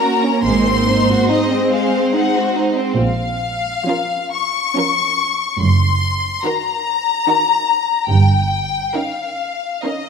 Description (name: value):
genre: classical, slow romantic movement for string orchestra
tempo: 71 BPM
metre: 3/4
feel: rubato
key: unclear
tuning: A4 = 440 Hz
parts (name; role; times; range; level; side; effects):
- warm symphonic violin section; melody; 0.0-10.1 s; Eb5 to Db6; -18 LUFS; left 6 dB; none
- rich studio violin section; second line; 0.0-10.1 s; Ab3 to C5; -21 LUFS; right 1 dB; none
- rich studio viola section; accompaniment; 0.0-10.1 s; Eb3 to Eb4; -21 LUFS; right 2 dB; none
- dark studio cello section; bass; 0.5-8.8 s; Gb2 to Bb2; -18 LUFS; right 3 dB; none
- rich symphonic double bass section; bass; 0.5-8.8 s; Gb1 to Bb1; -19 LUFS; right 3 dB; none
room: wet scoring stage reverb, RT60 1.9 s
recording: none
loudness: -15 LUFS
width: side -6 dB against mid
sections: 0.0-10.1 A section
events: none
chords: 0.4 Ab7; 3.0 Bbm; 5.6 Ebm/Gb; 8.1 Eb7/G